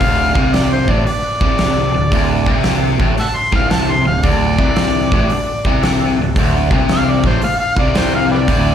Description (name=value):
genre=blues rock power trio and southern rock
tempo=113 BPM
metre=4/4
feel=swing 66% on 8ths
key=D mixolydian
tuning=A4 = 440 Hz
part: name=overdriven harmonica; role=melody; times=0.0-8.7 s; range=G4 to C6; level=-19 LUFS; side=left 1 dB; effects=slapback echo
part: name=overdriven tonewheel organ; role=sustained chords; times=0.0-8.7 s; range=D4 to C5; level=-29 LUFS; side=right 3 dB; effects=none
part: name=biting overdriven guitar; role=riff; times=0.0-8.7 s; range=D2 to C3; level=-17 LUFS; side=left 1 dB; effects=slapback echo
part: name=fuzz picked electric bass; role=bass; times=0.0-8.7 s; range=D1 to C2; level=-20 LUFS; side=equal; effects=overdrive
part: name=huge arena drum kit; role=drums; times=0.0-8.6 s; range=hi-hat, kick drum, snare drum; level=-18 LUFS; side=equal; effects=none
room=small room ambience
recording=live gig heard through the venue's PA, club reverb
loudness=-12 LUFS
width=side -9 dB against mid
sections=0.0-8.7 A section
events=harmonica solo 0.0-8.7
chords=0.0 D